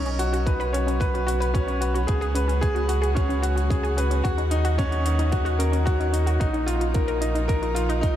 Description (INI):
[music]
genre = piano and strings electronica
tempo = 111 BPM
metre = 4/4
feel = straight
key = Eb minor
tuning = A4 = 441 Hz
[part]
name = bright string quartet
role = sustained chords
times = 0.0-8.2 s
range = C#3 to Gb4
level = -40 LUFS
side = right 1 dB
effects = sidechain pumping
[part]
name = bright grand piano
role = riff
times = 0.0-8.2 s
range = C#4 to Eb5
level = -26 LUFS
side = equal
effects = ping-pong delay
[part]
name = warm sub bass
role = bass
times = 0.0-8.2 s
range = Bb1 to Eb2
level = -24 LUFS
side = equal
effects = sidechain pumping
[part]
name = analog pluck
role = arpeggios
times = 0.1-8.0 s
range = C#4 to B4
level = -30 LUFS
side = left 2 dB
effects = chorus, sidechain pumping, ping-pong delay
[part]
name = electronic hi-hat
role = drums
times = 0.1-8.1 s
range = none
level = -38 LUFS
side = right 2 dB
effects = overdrive
[part]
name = electronic kick drum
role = drums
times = 0.5-8.1 s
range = none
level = -26 LUFS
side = equal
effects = none
[sound]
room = moderate huge ambient reverb, RT60 8.7 s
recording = dreamy mix soaked in reverb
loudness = -21 LUFS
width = side -11 dB against mid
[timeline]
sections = 0.0-8.2 A section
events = fade-in on string quartet 0.0-8.2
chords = 0.0 Bsus2; 2.1 Db7sus4; 4.2 Ebm7; 6.4 Bbsus4